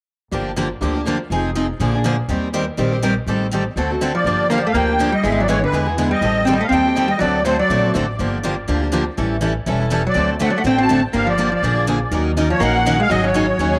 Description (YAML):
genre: acoustic string swing (jazz manouche)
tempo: 244 BPM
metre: 4/4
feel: swing 56% on 8ths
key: G minor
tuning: A4 = 440 Hz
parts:
  - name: picked steel-string acoustic guitar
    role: accompaniment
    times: 0.3-13.8 s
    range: Db3 to Bb4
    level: -26 LUFS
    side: equal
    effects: cassette tape
  - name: picked swing-style acoustic guitar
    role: accompaniment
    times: 0.3-13.8 s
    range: Db3 to C5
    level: -26 LUFS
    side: equal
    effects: cassette tape
  - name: upright bass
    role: bass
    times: 0.3-13.8 s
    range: E1 to E2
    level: -26 LUFS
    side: equal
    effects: none
  - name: archtop guitar, miked and amplified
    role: second line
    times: 4.1-7.9, 10.1-13.8 s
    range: D3 to C4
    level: -22 LUFS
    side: equal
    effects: cassette tape
  - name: musette accordion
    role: melody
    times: 4.2-7.9, 10.1-13.8 s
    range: B4 to A5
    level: -22 LUFS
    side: equal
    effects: cassette tape, tape echo
room: moderate spring reverb, RT60 1.9 s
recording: home recording on cassette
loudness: -18 LUFS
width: mono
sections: 0.3-4.3 A section; 4.3-12.1 B section; 12.1-13.8 C section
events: none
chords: 0.3 Gm7; 1.3 Fm7; 1.8 Bb7; 2.3 Eb6; 3.3 Am7b5; 3.8 D7; 4.3 Gm7; 5.2 E7/G#; 6.2 Am7b5; 7.2 D7; 8.2 Gm7; 9.2 A7; 10.2 D7; 11.1 Gm7; 11.6 Bb7; 12.1 Ebm7; 13.1 Ab7sus4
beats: | 0.32 0.57 0.81 1.06 | 1.30 1.55 1.80 2.04 | 2.29 2.53 2.78 3.03 | 3.27 3.52 3.76 4.01 | 4.25 4.50 4.75 4.99 | 5.24 5.48 5.73 5.98 | 6.22 6.47 6.71 6.96 | 7.21 7.45 7.70 7.94 | 8.19 8.44 8.68 8.93 | 9.17 9.42 9.66 9.91 | 10.16 10.40 10.65 10.89 | 11.14 11.39 11.63 11.88 | 12.12 12.37 12.62 12.86 | 13.11 13.35 13.60